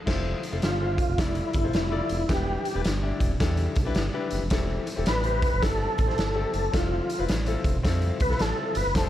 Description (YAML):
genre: uptempo 1960s-style soul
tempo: 108 BPM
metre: 4/4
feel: swing 64% on 8ths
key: unclear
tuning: A4 = 440 Hz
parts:
  - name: clear concert grand piano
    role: accompaniment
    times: 0.1-9.1 s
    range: E3 to D5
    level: -32 LUFS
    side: left 5 dB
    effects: none
  - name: smooth gliding synth bass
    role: bass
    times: 0.1-9.1 s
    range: E1 to F2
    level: -28 LUFS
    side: equal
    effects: none
  - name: raw garage drum kit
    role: drums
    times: 0.1-9.1 s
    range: crash cymbal, hi-hat, kick drum, snare drum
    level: -27 LUFS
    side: equal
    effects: none
  - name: tonewheel organ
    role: melody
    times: 0.6-9.1 s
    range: E4 to B4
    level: -28 LUFS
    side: equal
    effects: overdrive, chorus vibrato, slow rotary speaker
room: light reverb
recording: none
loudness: -23 LUFS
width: side -12 dB against mid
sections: 0.1-9.1 A section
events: tonewheel organ solo 0.1-9.1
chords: 0.1 Fmaj7; 2.3 Em7; 4.5 Am7/E; 6.7 Fmaj7